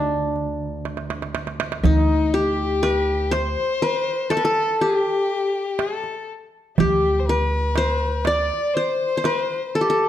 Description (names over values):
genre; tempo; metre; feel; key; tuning
Turkish makam ensemble; 122 BPM (eighths); 10/8; straight; D makam hicaz; A4 = 440 Hz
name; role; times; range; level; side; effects
qanun; melody; 0.0-10.1 s; D4 to D5; -22 LUFS; left 1 dB; none
warm double bass; drone; 0.0-1.9 s; D2; -32 LUFS; right 3 dB; none
darbuka; percussion; 0.4-9.5 s; none; -25 LUFS; right 7 dB; none
rich violin; second line; 1.8-10.1 s; Eb4 to D5; -24 LUFS; left 4 dB; none
upright bass; bass; 1.8-8.5 s; D2; -22 LUFS; equal; none
room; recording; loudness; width
moderate recital hall reverb, RT60 1.2 s; dark, warm production; -19 LUFS; side -11 dB against mid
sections
0.0-1.8 A section; 1.8-10.1 B section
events
drum fill 0.8-1.8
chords
none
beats
0.36 0.85 1.34 | 1.84 2.33 2.83 3.32 3.81 4.31 4.80 5.29 5.79 6.28 | 6.78 7.27 7.76 8.26 8.75 9.25 9.74